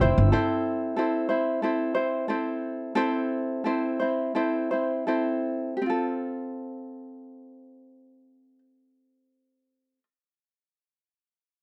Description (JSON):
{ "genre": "pop", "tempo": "79-93 BPM", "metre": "4/4", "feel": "straight", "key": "unclear", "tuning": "A4 = 440 Hz", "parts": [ { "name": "tenor ukulele", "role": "accompaniment", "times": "0.0-10.1 s", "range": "C4 to C5", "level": "-28 LUFS", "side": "equal", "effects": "none" } ], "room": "wet spring reverb, RT60 1.2 s, studio reverb", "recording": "dark, warm production", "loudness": "-27 LUFS", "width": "mono", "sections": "0.3-5.8 A section; 5.8-8.8 B section", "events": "slowing down 0.3-5.8", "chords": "0.3 Am; 5.8 F", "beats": "| 0.33 0.98 1.63 2.29 | 2.96 3.64 4.34 5.07 | 5.81 6.57 7.32 8.08" }